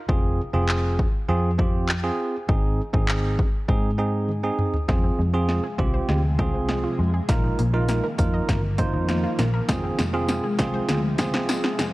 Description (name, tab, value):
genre	dance-pop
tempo	100 BPM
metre	4/4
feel	straight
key	F dorian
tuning	A4 = 439 Hz
part	bell-like tine electric piano	accompaniment	0.1-11.8 s	C4 to C5	-27 LUFS	right 2 dB	sidechain pumping
part	vintage muted fingered electric bass	bass	0.1-11.9 s	F1 to Ab2	-24 LUFS	equal	sidechain pumping
part	house drum kit	drums	0.1-11.9 s	handclaps, hi-hat, kick drum, snare drum, toms	-24 LUFS	equal	none
part	granular cloud pad	sustained chords	5.6-11.9 s	C3 to Bb3	-32 LUFS	equal	built-in reverb, sidechain pumping
part	analog pluck	arpeggios	4.9-11.9 s	Ab3 to Eb5	-33 LUFS	left 1 dB	chorus, sidechain pumping, ping-pong delay
part	tambourine	percussion	9.7-11.9 s	none	-41 LUFS	left 5 dB	none
room	light reverb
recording	worn, warbling old tape, cassette tape, warbly pitch drift, high-pass filter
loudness	-20 LUFS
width	side -19 dB against mid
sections	0.0-4.9 A section; 4.9-11.9 B section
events	drum fill 4.3-4.9, 4.9-11.9; build-up 4.9-11.9; filter sweep 4.9-11.9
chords	0.1 Fm; 2.5 Ab; 4.9 Fm; 7.3 Bbsus4; 9.7 Fm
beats	| 0.09 0.69 1.29 1.89 | 2.49 3.09 3.69 4.29 | 4.89 5.49 6.09 6.69 | 7.29 7.89 8.49 9.09 | 9.69 10.29 10.89 11.49